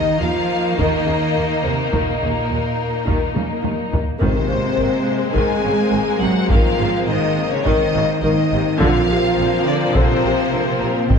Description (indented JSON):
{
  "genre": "cinematic, epic orchestral film score",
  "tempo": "105 BPM",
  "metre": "4/4",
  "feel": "straight",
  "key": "Ab major",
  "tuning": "A4 = 442 Hz",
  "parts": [
    { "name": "warm symphonic violin section", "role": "melody", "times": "0.0-11.2 s", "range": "Bb4 to Ab5", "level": "-24 LUFS", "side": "left 5 dB", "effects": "none" },
    { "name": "rich symphonic violin section", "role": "second line", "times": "0.0-11.2 s", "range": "Bb3 to Eb4", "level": "-23 LUFS", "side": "left 3 dB", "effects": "none" },
    { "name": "dark French horn section", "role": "sustained chords", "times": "0.0-11.2 s", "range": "Bb3 to Ab4", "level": "-24 LUFS", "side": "left 2 dB", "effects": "none" },
    { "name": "rich symphonic cello section", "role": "bass", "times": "0.0-11.2 s", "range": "Bb2 to Ab3", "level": "-24 LUFS", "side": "right 4 dB", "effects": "none" },
    { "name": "rich symphonic viola section", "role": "accompaniment", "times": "0.2-11.2 s", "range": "C3 to Ab3", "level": "-23 LUFS", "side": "left 1 dB", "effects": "none" },
    { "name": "warm symphonic double bass section", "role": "bass", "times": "0.2-11.2 s", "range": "Ab1 to Eb2", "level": "-26 LUFS", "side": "right 4 dB", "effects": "none" },
    { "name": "taiko ensemble", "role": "drums", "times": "0.8-11.2 s", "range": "none", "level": "-22 LUFS", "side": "equal", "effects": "none" },
    { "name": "timpani", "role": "percussion", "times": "4.2-5.0, 11.1-11.2 s", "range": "Ab2", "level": "-28 LUFS", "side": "left 1 dB", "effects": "none" }
  ],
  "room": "moderate scoring stage reverb, RT60 1.5 s",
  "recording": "dark, warm production",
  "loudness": "-16 LUFS",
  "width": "side -6 dB against mid",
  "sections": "0.0-11.2 A section",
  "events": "drum fill 3.4-4.2",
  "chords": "0.0 Eb5; 4.2 Abadd9; 8.8 Bbadd9"
}